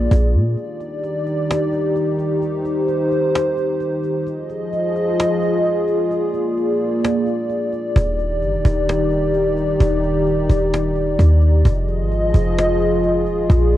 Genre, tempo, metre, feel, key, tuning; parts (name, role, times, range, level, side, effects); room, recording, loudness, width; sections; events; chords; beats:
hip hop, atmospheric cloud-rap; 130 BPM; 4/4; half-time; Eb major; A4 = 440 Hz
dark analog pad; sustained chords; 0.0-13.8 s; Eb3 to Eb5; -18 LUFS; equal; chorus
clean 808-style bass; bass; 0.0-0.6, 8.0-13.8 s; Eb1 to Bb2; -17 LUFS; equal
cajon; drums; 0.1-13.8 s; -24 LUFS; equal; cassette tape
moderate booth ambience, RT60 0.3 s; home recording on cassette; -16 LUFS; side -13 dB against mid
0.6-13.8 A section
break 0.6-8.0
0.0 Bb7; 0.6 Ebmaj7; 4.3 Fm7; 6.1 Bb7; 8.0 Ebmaj7; 11.7 Fm7
0.11 | 0.57 1.03 1.50 1.96 | 2.42 2.88 3.34 3.80 | 4.27 4.73 5.19 5.65 | 6.11 6.57 7.04 7.50 | 7.96 8.42 8.88 9.34 | 9.80 10.27 10.73 11.19 | 11.65 12.11 12.57 13.04 | 13.50